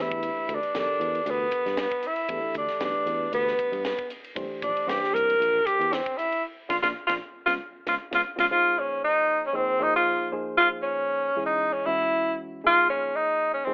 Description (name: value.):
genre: electric jazz fusion.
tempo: 116 BPM.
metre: 4/4.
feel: swing 54% on 16ths.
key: Gb lydian from 8.5 s.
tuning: A4 = 440 Hz.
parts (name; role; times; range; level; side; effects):
warm tenor saxophone; melody; 0.0-13.7 s; B3 to Bb4; -26 LUFS; equal; none.
reed electric piano; accompaniment; 0.0-13.7 s; Gb2 to C5; -37 LUFS; equal; none.
sustaining fretless electric bass; bass; 0.0-8.5 s; Bb1 to G2; -38 LUFS; equal; none.
crisp fusion drum kit; drums; 0.1-8.5 s; hi-hat, kick drum, ride cymbal, snare drum; -40 LUFS; equal; none.
room: light reverb.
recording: telephone sound.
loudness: -26 LUFS.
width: mono.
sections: 0.0-8.5 A section; 8.5-13.7 B section.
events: drum fill 0.0, 8.0-8.5; band accent 6.4-8.5; reed electric piano fill 7.7-8.5.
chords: 0.0 Em7; 4.4 C9; 6.4 Bb; 7.5 Db7; 8.5 Gbmaj7; 9.5 Ab69; 11.3 Dbm; 12.6 Gbmaj7.